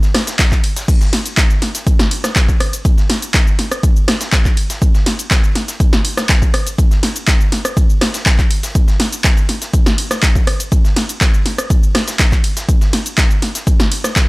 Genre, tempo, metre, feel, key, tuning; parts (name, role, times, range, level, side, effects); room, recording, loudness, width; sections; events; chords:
house; 122 BPM; 4/4; straight
breakbeat sampler-style drum kit; drums; 0.0-14.3 s; hi-hat, snare drum; -29 LUFS; equal
punchy analog drum machine; drums; 0.0-14.3 s; crash cymbal, handclaps, hi-hat, ride cymbal, rim click, shaker, snare drum; -17 LUFS; equal; overdrive
electronic kick drum; drums; 0.4-14.3 s; -13 LUFS; equal; overdrive
little or no reverb; dry, gritty hardware recording; -12 LUFS; side -23 dB against mid
0.0-14.3 A section